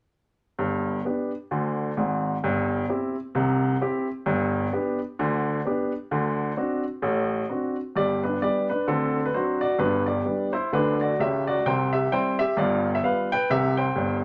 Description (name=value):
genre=jazz, stride piano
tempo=130 BPM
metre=4/4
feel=swing 59% on 8ths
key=G major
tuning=A4 = 441 Hz
part: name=clear baby grand piano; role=solo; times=0.6-14.2 s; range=G1 to G5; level=-25 LUFS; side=equal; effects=none
room=wet studio ambience, RT60 0.5 s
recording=none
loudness=-25 LUFS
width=mono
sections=0.6-8.0 A section; 8.0-14.2 B section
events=none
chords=0.6 G; 2.4 C/G; 4.3 G; 6.1 D7; 8.0 G; 8.9 D7; 9.8 G; 11.7 C; 12.6 G7; 13.5 C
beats=| 0.59 1.05 1.51 1.97 | 2.43 2.89 3.35 3.81 | 4.27 4.73 5.19 5.66 | 6.12 6.58 7.04 7.50 | 7.96 8.42 8.88 9.34 | 9.80 10.27 10.73 11.19 | 11.65 12.11 12.57 13.04 | 13.50 13.96